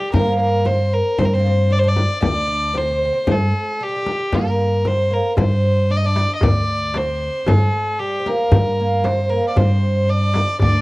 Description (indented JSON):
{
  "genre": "Arabic maqam ensemble",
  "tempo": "114 BPM",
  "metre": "4/4",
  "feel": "straight",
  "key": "G maqam bayati",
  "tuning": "A4 = 441 Hz",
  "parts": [
    { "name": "warm violin", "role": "melody", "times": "0.0-10.8 s", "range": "G4 to Eb5", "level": "-20 LUFS", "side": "equal", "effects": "cassette tape" },
    { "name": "oud", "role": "second line", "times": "0.0-10.8 s", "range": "G3 to D4", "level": "-26 LUFS", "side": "right 2 dB", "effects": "cassette tape" },
    { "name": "upright bass", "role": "bass", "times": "0.1-10.8 s", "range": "D2 to G2", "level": "-19 LUFS", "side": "equal", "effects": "none" },
    { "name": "frame drum", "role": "percussion", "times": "0.1-10.7 s", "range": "none", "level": "-22 LUFS", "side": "left 2 dB", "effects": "none" },
    { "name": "darbuka", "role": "percussion", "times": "5.4-10.8 s", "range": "none", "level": "-20 LUFS", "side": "equal", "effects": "none" }
  ],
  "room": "light reverb, studio reverb",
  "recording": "home recording on cassette",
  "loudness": "-16 LUFS",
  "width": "side -20 dB against mid",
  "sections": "0.0-10.8 A section",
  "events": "none",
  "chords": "none"
}